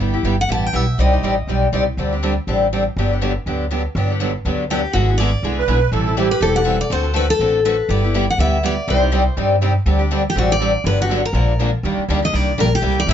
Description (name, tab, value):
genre	acoustic string swing (jazz manouche)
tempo	243 BPM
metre	4/4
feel	swing 57% on 8ths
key	G major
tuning	A4 = 438 Hz
part	picked acoustic archtop guitar	accompaniment	0.0-13.1 s	C3 to D5	-22 LUFS	left 5 dB	none
part	picked steel-string acoustic guitar	accompaniment	0.0-13.1 s	C3 to D5	-24 LUFS	right 7 dB	none
part	upright bass	bass	0.0-13.1 s	E1 to G2	-19 LUFS	equal	none
part	picked steel-string acoustic guitar	melody	0.4-1.8, 4.7-13.1 s	F#4 to A5	-20 LUFS	left 2 dB	none
part	musette accordion	second line	5.6-6.6 s	G4 to B4	-20 LUFS	right 9 dB	none
room	light reverb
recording	nothing above 7.6 kHz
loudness	-15 LUFS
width	side -9 dB against mid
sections	0.0-4.0 A section; 4.0-11.8 A section; 11.8-13.1 B section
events	none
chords	0.0 G6; 1.0 Cmadd9; 2.0 D7sus4; 3.0 Gmaj7; 4.9 E7/G#; 5.9 Am7; 6.9 D7; 7.9 G6; 8.9 Cmadd9; 9.9 D7sus4; 10.8 Gmaj7; 11.3 Bb7; 11.8 Ebmaj7